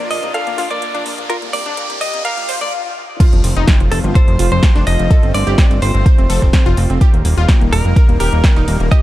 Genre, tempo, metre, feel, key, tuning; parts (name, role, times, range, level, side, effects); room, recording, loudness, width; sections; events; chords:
progressive house; 126 BPM; 4/4; straight; F mixolydian; A4 = 442 Hz
direct-recorded clean electric guitar; melody; 0.0-9.0 s; A4 to F5; -22 LUFS; equal; wide subtle chorus, sidechain pumping, dub echo
supersaw pad; sustained chords; 0.0-9.0 s; G3 to D5; -26 LUFS; right 1 dB; sidechain pumping
analog pluck; arpeggios; 0.0-9.0 s; F3 to C5; -23 LUFS; left 2 dB; chorus, sidechain pumping, dub echo
fat analog bass; bass; 0.0-8.9 s; Eb1 to C2; -16 LUFS; equal; sidechain pumping
riser, swell and impact; sound effects; 0.0-5.1 s; -25 LUFS; equal
big-room dance drum kit; drums; 0.1-9.0 s; crash cymbal, hi-hat, snare drum; -23 LUFS; equal; sidechain pumping on hats, studio reverb, sidechain pumping on cymbals
breakbeat sampler-style drum kit; drums; 3.2-9.0 s; hi-hat, snare drum; -31 LUFS; equal; sidechain pumping on hats, high-pass filter on hats, studio reverb, high-pass filter on snare, high-pass filter on room
electronic kick drum; drums; 3.2-9.0 s; -11 LUFS; equal; studio reverb
little or no reverb; dark, warm production, high-pass filter; -11 LUFS; side -15 dB against mid
0.0-3.2 A section; 3.2-9.0 B section
build-up 0.0-3.2; riser 0.0-2.7; filter sweep on synth pluck 0.0-3.2; swell 2.2-3.2; stop 2.7-3.2; drop 3.2-9.0; impact 3.2-5.1
0.0 Bb; 3.2 F; 7.0 Eb